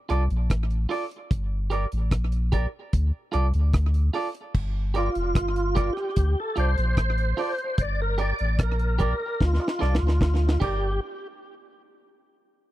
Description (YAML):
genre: roots reggae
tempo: 74 BPM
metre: 4/4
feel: straight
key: G minor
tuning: A4 = 439 Hz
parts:
  - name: clean electric guitar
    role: accompaniment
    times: 0.1-10.9 s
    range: F4 to D5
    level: -31 LUFS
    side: right 4 dB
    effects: tape echo
  - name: warm sub bass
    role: bass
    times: 0.1-11.0 s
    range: F1 to D2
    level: -23 LUFS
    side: equal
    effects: none
  - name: deep reggae drum kit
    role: drums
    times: 0.1-10.8 s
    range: crash cymbal, hi-hat, kick drum, rim click, snare drum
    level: -25 LUFS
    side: equal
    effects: slapback echo
  - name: tonewheel organ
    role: melody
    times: 5.0-11.0 s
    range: F4 to D5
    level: -28 LUFS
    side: equal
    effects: overdrive, chorus vibrato, slow rotary speaker, tape echo
room: little or no reverb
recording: dry, close 1970s-style studio recording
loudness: -22 LUFS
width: side -15 dB against mid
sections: 0.0-4.5 A section; 4.5-11.0 B section; 11.0-12.7 C section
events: drum fill 9.4-11.0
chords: 0.0 Dm; 1.3 Gm; 2.9 Dm; 4.5 Gm; 6.2 Dm; 7.8 Gm; 9.4 Dm; 10.6 Gm; 11.0 N.C.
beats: 0.50 | 1.31 2.12 2.93 3.74 | 4.55 5.36 6.16 6.97 | 7.78 8.59 9.40 10.21